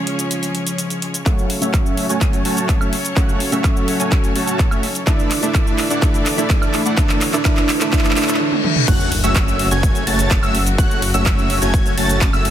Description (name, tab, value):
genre	EDM, festival progressive house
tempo	126 BPM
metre	4/4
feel	straight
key	F# minor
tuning	A4 = 441 Hz
part	felt-muted upright piano	accompaniment	0.0-8.9 s	C#3 to D4	-23 LUFS	right 2 dB	sidechain pumping, ping-pong delay
part	clear studio string section	sustained chords	0.0-12.5 s	C#3 to D5	-27 LUFS	left 2 dB	sidechain pumping
part	big-room dance drum kit	drums	0.1-12.5 s	crash cymbal, handclaps, hi-hat, ride cymbal, shaker, toms, woodblock	-22 LUFS	equal	none
part	dense compressed supersaw	riff	1.3-12.5 s	A3 to A5	-22 LUFS	right 1 dB	sidechain pumping, low-pass filter, ping-pong delay
part	electronic kick drum	drums	1.3-12.3 s	none	-17 LUFS	equal	none
part	riser, reverse cymbal and sub drop	sound effects	4.9-10.8 s	none	-28 LUFS	left 3 dB	none
part	wide unison lead	arpeggios	8.9-12.5 s	E6 to A6	-23 LUFS	left 1 dB	sidechain pumping, ping-pong delay
part	detuned saw bass	bass	8.9-12.5 s	F#1	-21 LUFS	equal	sidechain pumping
room	light reverb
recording	dense, heavily limited modern master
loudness	-15 LUFS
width	side -10 dB against mid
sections	0.0-1.3 A section; 1.3-8.9 B section; 8.9-12.5 C section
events	build-up 1.3-8.9; drum fill 1.3-8.4, 8.5-8.9; filter sweep on supersaw synth 1.3-8.9; reverse cymbal 7.9-8.9; drop 8.9-12.5; impact 8.9-10.8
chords	0.0 C#; 1.3 F#m; 5.1 Dsus2; 8.9 F#m